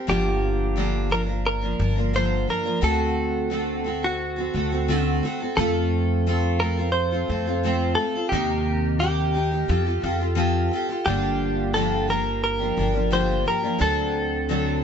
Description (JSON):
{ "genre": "acoustic pop", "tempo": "87 BPM", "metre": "4/4", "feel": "straight", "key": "G minor", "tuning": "A4 = 437 Hz", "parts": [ { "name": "picked steel-string acoustic guitar", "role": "accompaniment", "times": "0.0-14.8 s", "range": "G2 to Bb4", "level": "-25 LUFS", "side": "equal", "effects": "double-tracked left and right, plate reverb" }, { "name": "direct-recorded clean electric guitar", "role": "melody", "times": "0.1-14.8 s", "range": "F#4 to C5", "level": "-26 LUFS", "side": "equal", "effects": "lush chorus, plate reverb" }, { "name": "upright bass", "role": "bass", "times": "0.1-14.8 s", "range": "G1 to F2", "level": "-26 LUFS", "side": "equal", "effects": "none" } ], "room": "light reverb", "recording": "nothing above 7.9 kHz", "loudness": "-21 LUFS", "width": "side -7 dB against mid", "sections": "0.0-11.1 A section; 11.1-14.8 A section", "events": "none", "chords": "0.1 Gm7; 2.8 D7; 5.6 F; 8.3 Cm7/Eb; 9.7 Fadd9; 11.1 Gm7; 13.8 D7" }